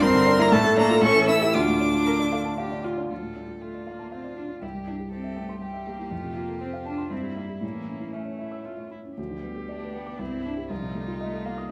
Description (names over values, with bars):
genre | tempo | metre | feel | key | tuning
quick classical-period movement for piano quartet | 118 BPM | 3/4 | rubato | D minor | A4 = 440 Hz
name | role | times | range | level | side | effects
clear violin | melody | 0.0-11.7 s | C#4 to E6 | -32 LUFS | equal | none
rich cello | second line | 0.0-11.7 s | F3 to E4 | -32 LUFS | equal | none
clear viola | accompaniment | 0.0-11.7 s | C#4 to Bb4 | -32 LUFS | equal | none
warm grand piano | accompaniment | 0.0-11.7 s | C2 to E6 | -30 LUFS | equal | none
room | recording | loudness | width
wet recital hall reverb, RT60 1.4 s | none | -25 LUFS | mono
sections
0.0-3.1 A section; 3.1-11.7 A section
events
none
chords
0.0 Em7b5/G; 0.5 Dm/A; 1.0 A7; 1.5 Dm; 4.6 C; 6.1 F; 7.1 Em/G; 7.6 A; 9.2 G/D; 10.2 C; 10.7 F7/C